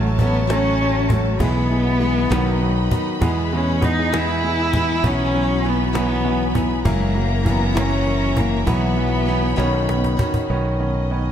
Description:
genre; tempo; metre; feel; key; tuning
six-eight pop ballad; 66 BPM (dotted quarters); 6/8; straight; unclear; A4 = 439 Hz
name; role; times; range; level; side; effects
dark cello; melody; 0.0-10.2 s; G#3 to E4; -22 LUFS; left 1 dB; slapback echo, ping-pong delay
warm grand piano; accompaniment; 0.0-11.3 s; D#3 to C#4; -24 LUFS; right 2 dB; slapback echo
warm studio string section; sustained chords; 0.0-11.3 s; C#4 to B5; -30 LUFS; left 2 dB; none
picked plugged-in steel-string acoustic guitar; arpeggios; 0.0-10.5 s; E2 to C#5; -29 LUFS; left 6 dB; slapback echo
fretless electric bass; bass; 0.0-11.3 s; F#1 to E2; -22 LUFS; equal; none
cajon; drums; 0.2-10.5 s; none; -24 LUFS; equal; none
room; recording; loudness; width
moderate concert hall reverb, RT60 2.4 s; big arena sound; -17 LUFS; side -9 dB against mid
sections
0.0-10.5 A section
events
drum fill 9.6-10.5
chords
0.0 F#m/A; 1.4 E/B; 2.3 B; 3.2 E; 5.0 Bsus4; 6.9 F#7; 8.7 Bsus4; 9.6 Badd9

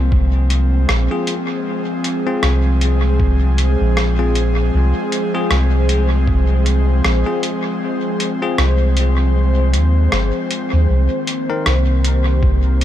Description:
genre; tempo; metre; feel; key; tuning
ambient dub; 78 BPM; 4/4; swing 57% on 16ths; unclear; A4 = 440 Hz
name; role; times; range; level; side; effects
airy breathy pad; sustained chords; 0.0-12.8 s; Eb3 to C5; -20 LUFS; equal; chorus
soft dub sub bass; bass; 0.0-12.8 s; G1 to Eb2; -14 LUFS; equal; none
electronic kick drum; drums; 0.1-6.5, 12.4-12.6 s; none; -18 LUFS; equal; none
lo-fi sampler-style drum kit; drums; 0.5-12.8 s; hi-hat, rim click; -24 LUFS; equal; dub echo
bell-like tine electric piano; stabs; 1.1-11.7 s; C4 to Bb4; -27 LUFS; left 4 dB; fast stereo tremolo, dub echo
room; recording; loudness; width
digital ambience; none; -14 LUFS; side -12 dB against mid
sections
0.0-12.8 A section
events
kick drops out 7.8-10.9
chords
0.0 Fm; 10.9 Cm7

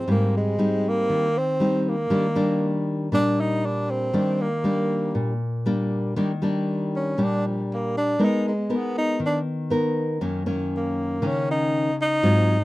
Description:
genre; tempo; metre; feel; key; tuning
bossa nova; 119 BPM; 4/4; straight; Eb major; A4 = 439 Hz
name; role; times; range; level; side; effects
breathy tenor saxophone; melody; 0.0-12.6 s; F3 to Eb4; -24 LUFS; equal; none
nylon-string guitar; accompaniment; 0.0-12.6 s; Gb2 to Bb4; -23 LUFS; left 1 dB; none
room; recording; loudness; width
light reverb; dry, close 1970s-style studio recording; -21 LUFS; side -18 dB against mid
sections
0.0-6.2 A section; 6.2-12.6 B section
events
tenor saxophone solo 6.2-12.6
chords
0.1 Abmaj7; 2.1 Ebmaj7; 8.2 Abmadd9; 10.2 Gb6

